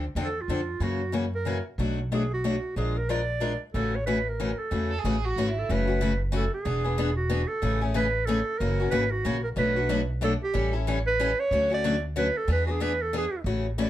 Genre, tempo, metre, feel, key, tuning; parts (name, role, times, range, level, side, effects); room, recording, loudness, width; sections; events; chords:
acoustic string swing (jazz manouche); 185 BPM; 3/4; swing 59% on 8ths; A major; A4 = 441 Hz
picked steel-string acoustic guitar; accompaniment; 0.0-13.9 s; B2 to Bb4; -29 LUFS; left 4 dB
upright bass; bass; 0.0-13.9 s; E1 to F#2; -29 LUFS; equal
warm clarinet; melody; 0.2-13.9 s; F4 to D5; -28 LUFS; right 2 dB
rich violin; second line; 4.9-5.7 s; E4 to A4; -33 LUFS; right 6 dB
light reverb; -24 LUFS; side -13 dB against mid
0.0-5.7 A section; 5.7-13.5 B section
0.0 Dm7; 0.8 F#7; 1.8 Bm7; 2.8 Bb7; 3.7 A6; 5.7 F#m7; 6.7 E7; 7.6 Amaj9; 8.6 F#7; 9.6 Bm7; 10.5 A7; 11.5 Dmaj7; 12.5 E7